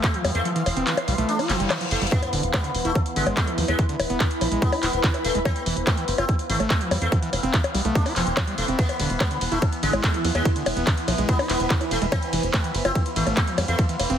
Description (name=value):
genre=psychedelic trance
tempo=144 BPM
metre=4/4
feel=straight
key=unclear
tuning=A4 = 439 Hz
part: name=sitar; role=melody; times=0.0-13.8 s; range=G#3 to D4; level=-30 LUFS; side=left 1 dB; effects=phaser, sidechain pumping, dub echo
part: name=overtone-sweeping drone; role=sustained chords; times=0.0-14.2 s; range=E3 to B3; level=-31 LUFS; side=equal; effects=chorus, built-in reverb, sidechain pumping
part: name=overdriven acid bass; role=riff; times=0.0-14.2 s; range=D3 to F4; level=-29 LUFS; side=equal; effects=distortion, auto-pan, sidechain pumping, tape echo
part: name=electronic kick drum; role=drums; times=0.0-13.9 s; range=none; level=-22 LUFS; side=equal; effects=none
part: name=techno drum kit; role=drums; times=0.0-14.2 s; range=bongos, handclaps, hi-hat, ride cymbal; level=-27 LUFS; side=left 2 dB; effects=none
part: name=granular cloud pad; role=texture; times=0.0-14.2 s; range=E4 to C6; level=-32 LUFS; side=right 1 dB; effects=built-in reverb, sidechain pumping
part: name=tight sequencer bass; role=bass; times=0.2-14.2 s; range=E1 to F2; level=-27 LUFS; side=equal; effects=none
part: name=reverse cymbal and sub drop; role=sound effects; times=1.4-3.8 s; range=none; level=-33 LUFS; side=left 3 dB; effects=none
room=light reverb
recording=heavily compressed radio sound, multiband compression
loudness=-20 LUFS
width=side -9 dB against mid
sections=0.0-2.1 A section; 2.1-14.2 B section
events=kick drops out 0.5-2.1; reverse cymbal 1.4-2.1; drum fill 1.9; drop 2.1-14.2; impact 2.1-3.8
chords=0.0 F5; 2.1 E5; 5.5 F5; 8.8 E5; 12.1 F5